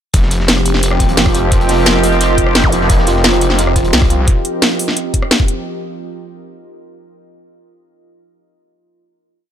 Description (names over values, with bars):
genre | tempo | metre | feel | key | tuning
dark technical drum and bass | 174 BPM | 4/4 | straight | unclear | A4 = 440 Hz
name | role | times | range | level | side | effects
sweeping resonant pad | sustained chords | 0.1-5.6 s | F3 to G4 | -20 LUFS | equal | chorus, sidechain pumping
snarling distorted saw bass | bass | 0.1-4.3 s | F1 to C2 | -16 LUFS | equal | distortion, overdrive
crunchy breakbeat drum kit | drums | 0.1-4.2 s | hi-hat, snare drum | -26 LUFS | equal | high-pass filter on hats, high-pass filter on snare, high-pass filter on room
drum and bass drum kit | drums | 0.1-5.6 s | hi-hat, rim click, snare drum | -15 LUFS | equal | none
electronic kick drum | drums | 0.1-5.5 s | none | -14 LUFS | equal | none
deep dark ambient pad | texture | 0.8-4.3 s | F4 to Eb5 | -21 LUFS | right 3 dB | chorus, built-in reverb, sidechain pumping
zap | sound effects | 2.6-2.7 s | none | -22 LUFS | equal | none
soft round pluck | arpeggios | 3.1-4.2 s | F4 | -22 LUFS | right 3 dB | wide subtle chorus, vintage 12-bit sampler grit, sidechain pumping, ping-pong delay
room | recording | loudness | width
light reverb, digital ambience | none | -10 LUFS | side -10 dB against mid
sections
0.1-5.7 drop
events
drop 0.1-5.7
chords
0.1 Fsus2